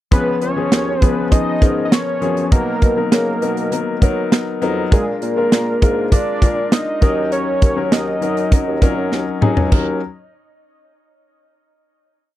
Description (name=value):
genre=1980s-style pop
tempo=100 BPM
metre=4/4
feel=straight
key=Eb minor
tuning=A4 = 440 Hz
part: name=fat analog lead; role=melody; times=0.1-9.1 s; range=Ab4 to Eb5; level=-21 LUFS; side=right 1 dB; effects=chorus, tape echo
part: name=clear concert grand piano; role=accompaniment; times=0.1-10.0 s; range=F3 to Bb4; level=-20 LUFS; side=left 4 dB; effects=none
part: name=mellow bassoon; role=bass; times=0.1-10.0 s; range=Db2 to F#3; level=-24 LUFS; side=right 1 dB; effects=none
part: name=modern studio drum kit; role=drums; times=0.1-9.9 s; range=crash cymbal, hi-hat, kick drum, snare drum, toms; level=-13 LUFS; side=right 1 dB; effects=none
room=little or no reverb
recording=dry, close 1970s-style studio recording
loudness=-14 LUFS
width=side -14 dB against mid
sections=0.1-9.7 verse; 9.7-12.1 final chord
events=drum fill 9.1-9.7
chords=0.1 Db7; 2.5 Bmaj7; 4.9 Bb7; 7.0 Ebm7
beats=| 0.12 0.72 1.32 1.92 | 2.52 3.12 3.72 4.32 | 4.92 5.52 6.12 6.72 | 7.32 7.92 8.52 9.12 | 9.72